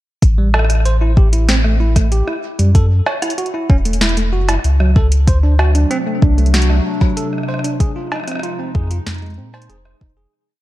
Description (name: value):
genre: IDM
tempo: 95 BPM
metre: 4/4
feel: straight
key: unclear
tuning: A4 = 440 Hz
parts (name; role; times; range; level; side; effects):
- warm sub bass; bass; 0.2-10.3 s; E1 to Bb2; -14 LUFS; equal; none
- booming analog drum machine; drums; 0.2-10.0 s; cowbell, hi-hat, rim click, snare drum; -21 LUFS; equal; ping-pong delay
- electronic kick drum; drums; 0.2-10.1 s; none; -13 LUFS; equal; none
- bell-like tine electric piano; arpeggios; 0.4-10.3 s; F#3 to C#5; -22 LUFS; right 2 dB; ping-pong delay
- warbly tape-like pad; sustained chords; 5.6-10.3 s; C3 to Eb4; -23 LUFS; left 2 dB; chorus, built-in reverb, sidechain pumping
room: digital ambience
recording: dark, warm production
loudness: -13 LUFS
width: side -15 dB against mid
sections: 0.2-10.3 groove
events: fade-out 7.0-10.3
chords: 0.2 A7(no3); 2.7 F#m7; 5.3 D7; 7.8 Fm7